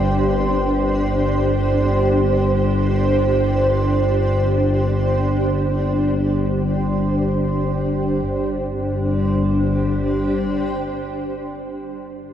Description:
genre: dark ambient drone.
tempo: free time.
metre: none.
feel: none.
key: unclear.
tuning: A4 = 437 Hz.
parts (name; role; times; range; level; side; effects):
granular cloud pad; sustained chords; 0.0-11.5 s; D4 to C5; -20 LUFS; equal; built-in reverb.
analog drone; drone; 0.0-11.2 s; G1 to G2; -20 LUFS; equal; chorus.
room: wet cathedral reverb, RT60 6.9 s.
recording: none.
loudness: -17 LUFS.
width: side -10 dB against mid.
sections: 0.0-8.2 A section; 8.2-12.3 B section.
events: none.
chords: 0.0 G5.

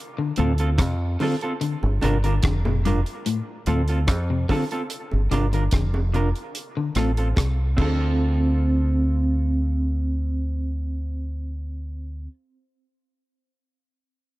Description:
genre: roots reggae.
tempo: 73 BPM.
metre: 4/4.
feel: straight.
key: D minor.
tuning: A4 = 441 Hz.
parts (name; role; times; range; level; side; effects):
electric guitar at the edge of break-up; arpeggios; 0.2-8.3 s; G2 to D3; -28 LUFS; left 5 dB; spring reverb.
mellow electric guitar; accompaniment; 0.4-12.3 s; C4 to Bb4; -27 LUFS; right 2 dB; harmonic tremolo, dub echo.
deep dub fingered electric bass; bass; 0.4-12.3 s; F1 to F2; -22 LUFS; equal; none.
damped 70s drum kit; drums; 0.4-8.0 s; crash cymbal, hi-hat, kick drum, rim click; -25 LUFS; equal; none.
bongos; percussion; 0.8-8.6 s; none; -35 LUFS; right 4 dB; none.
room: small room ambience.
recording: dark, warm production.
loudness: -21 LUFS.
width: side -18 dB against mid.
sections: 0.0-8.2 A section; 8.2-11.5 B section.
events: none.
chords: 0.0 Dm7; 1.6 Gm7; 3.3 Dm7; 4.9 Gm7; 6.5 Dm7.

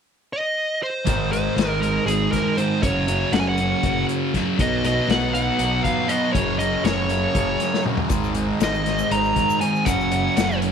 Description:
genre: psychedelic rock.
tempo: 239 BPM (eighths).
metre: 7/8.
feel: straight.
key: Ab mixolydian.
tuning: A4 = 439 Hz.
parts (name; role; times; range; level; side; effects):
fuzz lead guitar; melody; 0.3-10.6 s; Ab4 to Bb5; -23 LUFS; equal; distortion, slapback echo.
clear symphonic string section; sustained chords; 1.1-10.7 s; Gb3 to Eb5; -32 LUFS; right 14 dB; none.
thick fuzz guitar; riff; 1.1-10.7 s; Gb2 to B3; -22 LUFS; equal; distortion, phaser.
growling fingered electric bass; bass; 1.1-10.7 s; Gb1 to B1; -27 LUFS; equal; overdrive.
vintage drum kit; drums; 1.1-10.7 s; hi-hat, kick drum, snare drum, toms; -26 LUFS; left 4 dB; none.
egg shaker; percussion; 8.1-10.6 s; none; -40 LUFS; left 18 dB; none.
room: light reverb, small room ambience.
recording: 1960s-style stereo with parts hard left and right.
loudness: -19 LUFS.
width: side -7 dB against mid.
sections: 0.0-1.1 A section; 1.1-10.7 B section.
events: drum fill 7.7-8.1.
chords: 0.0 N.C.; 1.1 Ab; 2.8 Gb; 4.6 B; 6.3 Gb; 8.1 Ab; 9.9 Gb.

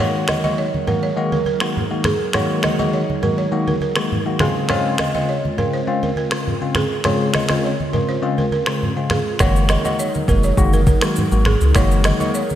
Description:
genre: afrobeats.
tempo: 102 BPM.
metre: 4/4.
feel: straight.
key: unclear.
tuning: A4 = 445 Hz.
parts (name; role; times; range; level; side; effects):
bell-like tine electric piano; accompaniment; 0.0-12.4 s; Db3 to Gb4; -21 LUFS; left 3 dB; phaser.
airy breathy pad; sustained chords; 0.0-12.6 s; Db3 to Bb4; -27 LUFS; right 1 dB; chorus.
balafon; riff; 0.0-12.5 s; Ab4 to Eb5; -24 LUFS; right 4 dB; digital delay.
afro-pop drum kit; drums; 0.3-12.6 s; finger snaps, kick drum, rim click, shaker; -22 LUFS; equal; overdrive, gated reverb.
congas; percussion; 0.3-12.6 s; none; -26 LUFS; right 1 dB; none.
saturated sub bass; bass; 9.4-12.1 s; F1 to Db2; -17 LUFS; equal; none.
room: moderate lush hall reverb, RT60 2.7 s.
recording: bright 1980s-style digital production.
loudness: -16 LUFS.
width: side -11 dB against mid.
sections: 0.0-12.6 A section.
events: break 0.0-9.4.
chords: 0.0 Gb69; 4.4 Dbmaj7; 9.4 Gb69.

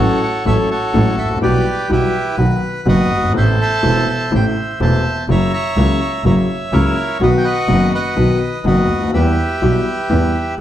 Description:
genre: tango.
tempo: 124 BPM.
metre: 4/4.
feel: rubato.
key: E minor.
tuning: A4 = 438 Hz.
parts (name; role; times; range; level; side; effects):
bandoneon; melody; 0.0-10.6 s; E4 to C#6; -19 LUFS; right 1 dB; none.
warm grand piano; accompaniment; 0.0-10.6 s; E1 to A4; -17 LUFS; left 2 dB; none.
clear double bass; bass; 0.0-10.6 s; E1 to E2; -18 LUFS; right 2 dB; none.
room: moderate large studio reverb, RT60 1.3 s.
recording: none.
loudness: -13 LUFS.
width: side -12 dB against mid.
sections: 0.0-10.6 A section.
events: none.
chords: 0.0 F#m/A; 1.4 Em/B; 2.4 B; 3.4 Am; 5.3 F#7; 7.2 B; 9.1 Em.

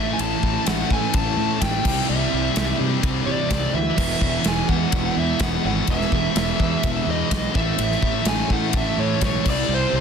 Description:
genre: quiet-loud alternative rock.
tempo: 126 BPM.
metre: 4/4.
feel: straight.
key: E major.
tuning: A4 = 440 Hz.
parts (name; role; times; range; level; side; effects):
dark smooth lead guitar; melody; 0.0-10.0 s; C5 to A5; -26 LUFS; right 1 dB; overdrive.
phased string machine; sustained chords; 0.0-10.0 s; E4 to A5; -36 LUFS; left 1 dB; ensemble chorus, phaser.
fuzz guitar; riff; 0.0-10.0 s; A2 to E4; -30 LUFS; equal; distortion.
heavy high-gain guitar; riff; 0.0-10.0 s; E2 to C4; -27 LUFS; left 15 dB; distortion.
thick fuzz guitar; riff; 0.0-10.0 s; A2 to E4; -27 LUFS; right 11 dB; distortion.
fuzz fingered electric bass; bass; 0.0-10.0 s; E1 to C3; -26 LUFS; equal; overdrive.
big rock drum kit; drums; 0.2-9.6 s; crash cymbal, kick drum, ride cymbal, snare drum; -24 LUFS; equal; none.
room: small room ambience.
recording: dense, heavily limited modern master.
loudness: -19 LUFS.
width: side -6 dB against mid.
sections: 0.0-10.0 A section.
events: none.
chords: 0.0 A; 1.8 C; 4.0 E; 7.6 A; 9.5 C.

